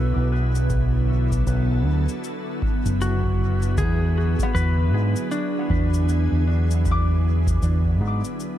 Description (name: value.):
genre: ambient dub.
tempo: 78 BPM.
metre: 4/4.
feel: swing 60% on 16ths.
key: unclear.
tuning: A4 = 440 Hz.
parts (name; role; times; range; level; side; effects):
clean lap steel guitar; melody; 0.0-6.4 s; D4 to B4; -30 LUFS; left 1 dB; dub echo.
soft additive organ-like pad; sustained chords; 0.0-8.6 s; D3 to A4; -28 LUFS; right 1 dB; ensemble chorus, built-in reverb.
concert harp; arpeggios; 0.0-8.6 s; B3 to D6; -35 LUFS; left 2 dB; dub echo.
fingered electric bass; bass; 0.0-8.2 s; F#1 to G#2; -20 LUFS; equal; none.
cabasa; drums; 0.6-8.6 s; none; -43 LUFS; left 8 dB; dub echo.
electronic kick drum; drums; 0.7-8.0 s; none; -27 LUFS; equal; none.
room: small room reverb.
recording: none.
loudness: -19 LUFS.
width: side -12 dB against mid.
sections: 0.0-8.6 A section.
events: none.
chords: 0.0 Bm7; 3.8 E7.